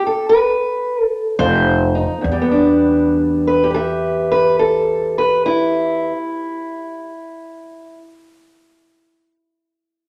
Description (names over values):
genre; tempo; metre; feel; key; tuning
acoustic country blues, solo or duo; 71-77 BPM; 4/4; swing 67% on 8ths; E minor; A4 = 440 Hz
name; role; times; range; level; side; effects
fingerpicked steel-string acoustic guitar; melody; 0.0-8.0 s; E2 to E5; -18 LUFS; equal; none
upright bass; bass; 1.4-6.1 s; F1 to E2; -24 LUFS; equal; none
room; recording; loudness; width
wet large studio reverb, RT60 0.9 s; none; -17 LUFS; mono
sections
0.0-2.2 A section; 2.2-5.6 B section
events
slowing down 0.0-2.2; steel-string acoustic guitar solo 0.0-2.2; stop 0.0-1.4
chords
0.0 N.C.; 1.4 F5; 2.2 Em7